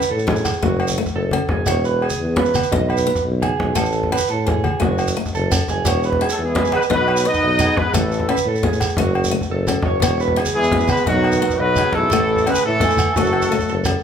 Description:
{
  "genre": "highlife guitar band",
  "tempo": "115 BPM (dotted quarters)",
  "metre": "12/8",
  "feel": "straight",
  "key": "E major",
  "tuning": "A4 = 440 Hz",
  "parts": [
    { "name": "picked steel-string acoustic guitar", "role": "accompaniment", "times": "0.0-14.0 s", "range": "A3 to D#4", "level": "-26 LUFS", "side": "left 7 dB", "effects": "none" },
    { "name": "electric guitar through a small old amp", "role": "arpeggios", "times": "0.0-14.0 s", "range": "F#4 to G#5", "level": "-23 LUFS", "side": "right 4 dB", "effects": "none" },
    { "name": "congas", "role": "percussion", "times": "0.0-14.0 s", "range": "none", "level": "-24 LUFS", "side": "left 1 dB", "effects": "none" },
    { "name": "shekere", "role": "percussion", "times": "0.0-13.9 s", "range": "none", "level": "-26 LUFS", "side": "right 2 dB", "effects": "none" },
    { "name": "warm tuba", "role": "bass", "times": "0.1-13.9 s", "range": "E1 to A2", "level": "-22 LUFS", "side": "equal", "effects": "none" },
    { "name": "agogo bells", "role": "percussion", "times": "0.4-14.0 s", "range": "none", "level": "-28 LUFS", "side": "right 2 dB", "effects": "none" },
    { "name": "warm horn section", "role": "melody", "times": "6.3-13.8 s", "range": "F#3 to D#5", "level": "-19 LUFS", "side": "equal", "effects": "none" },
    { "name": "breathy tenor saxophone", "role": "second line", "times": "6.3-13.8 s", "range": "D#3 to B3", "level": "-30 LUFS", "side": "left 4 dB", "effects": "none" }
  ],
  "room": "moderate large studio reverb, RT60 1.2 s",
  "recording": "band playing live in one room",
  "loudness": "-16 LUFS",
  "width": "side -8 dB against mid",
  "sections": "0.0-14.0 A section",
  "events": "drum fill 5.3-5.9",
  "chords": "0.0 A; 0.6 F#m; 1.7 E; 2.7 B; 3.8 A; 4.8 F#m; 5.9 E; 6.9 B; 7.9 A; 9.0 F#m; 10.0 E; 11.1 B; 12.1 A; 13.2 F#m",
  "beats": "0.11 0.63 1.15 | 1.68 2.20 2.72 3.25 | 3.77 4.29 4.81 5.34 | 5.86 6.38 6.90 7.42 | 7.95 8.47 8.99 9.51 | 10.03 10.55 11.07 11.60 | 12.12 12.64 13.16 13.68"
}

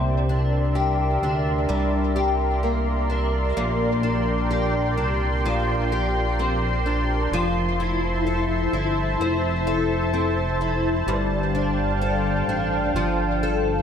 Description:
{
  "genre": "dream pop",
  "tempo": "64 BPM",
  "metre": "4/4",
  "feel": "straight",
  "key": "F major",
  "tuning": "A4 = 438 Hz",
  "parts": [
    { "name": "lush unison pad", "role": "sustained chords", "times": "0.0-13.8 s", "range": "Bb4 to C6", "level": "-27 LUFS", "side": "right 1 dB", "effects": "chorus" },
    { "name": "picked twelve-string acoustic guitar", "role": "arpeggios", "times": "0.0-13.8 s", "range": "G2 to A4", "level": "-24 LUFS", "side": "left 2 dB", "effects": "ensemble chorus, tape echo" },
    { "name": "chorused synth bass", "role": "bass", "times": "0.0-13.8 s", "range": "F1 to D2", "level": "-25 LUFS", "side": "equal", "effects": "none" },
    { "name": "small celesta", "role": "texture", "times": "0.0-2.9 s", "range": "E5", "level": "-38 LUFS", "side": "equal", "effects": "none" }
  ],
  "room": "moderate plate reverb, RT60 2.3 s",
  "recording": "none",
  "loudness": "-20 LUFS",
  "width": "side -8 dB against mid",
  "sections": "0.0-13.8 A section",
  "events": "none",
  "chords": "0.0 C9; 3.6 Bb69; 7.3 Fmaj7; 11.1 G7sus2",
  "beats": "0.76 1.70 2.63 | 3.57 4.51 5.45 6.38 | 7.32 8.26 9.20 10.13 | 11.07 12.01 12.95"
}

